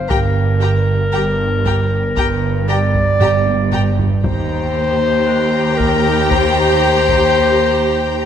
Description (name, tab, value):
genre	cinematic, suspense film score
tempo	58 BPM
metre	4/4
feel	straight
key	unclear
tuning	A4 = 439 Hz
part	clear clarinet	second line	0.0-8.3 s	Bb4 to D5	-18 LUFS	left 2 dB	none
part	concert harp	texture	0.0-8.3 s	F5 to F#6	-33 LUFS	left 5 dB	none
part	warm symphonic violin section	melody	0.1-8.3 s	Bb5	-26 LUFS	left 5 dB	none
part	warm studio violin section	second line	0.1-8.3 s	G5	-24 LUFS	left 2 dB	none
part	rich symphonic viola section	accompaniment	0.1-8.3 s	G4	-23 LUFS	right 2 dB	none
part	rich symphonic cello section	bass	0.1-8.3 s	D#2 to G2	-19 LUFS	right 2 dB	none
part	warm symphonic double bass section	bass	0.1-8.3 s	G1 to D#2	-20 LUFS	right 2 dB	none
part	taiko ensemble	drums	0.1-8.1 s	none	-23 LUFS	left 1 dB	none
room	moderate scoring stage reverb, RT60 1.9 s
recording	none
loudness	-13 LUFS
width	side -8 dB against mid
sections	0.0-8.3 A section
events	drum fill 3.2-4.2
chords	0.0 Gm; 4.2 D#